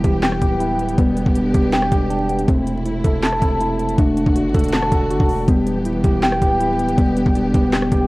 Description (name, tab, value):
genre	hip hop, trap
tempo	160 BPM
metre	4/4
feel	half-time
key	E minor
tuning	A4 = 441 Hz
part	mellow tine electric piano	accompaniment	0.0-8.1 s	G3 to A5	-21 LUFS	right 2 dB	none
part	warm symphonic string section	sustained chords	0.0-8.1 s	C3 to G4	-27 LUFS	left 1 dB	none
part	muted felt-like synth keys	arpeggios	0.0-8.1 s	B3 to A5	-21 LUFS	left 2 dB	chorus, digital delay
part	distorted 808-style bass	bass	0.0-8.1 s	D1 to G1	-24 LUFS	equal	distortion
part	trap drum kit	drums	0.0-8.0 s	handclaps, hi-hat, kick drum, rim click, snare drum	-18 LUFS	equal	none
room	little or no reverb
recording	worn, warbling old tape, cassette tape, vinyl crackle, warbly pitch drift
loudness	-15 LUFS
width	side -20 dB against mid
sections	0.0-8.1 A section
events	none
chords	0.0 Em; 1.0 G/E; 2.5 Am/E; 4.0 D/E; 5.5 Em; 7.0 G/E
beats	0.23 0.60 | 0.98 1.35 1.73 2.10 | 2.48 2.85 3.23 3.60 | 3.98 4.36 4.73 5.11 | 5.48 5.86 6.23 6.61 | 6.98 7.36 7.73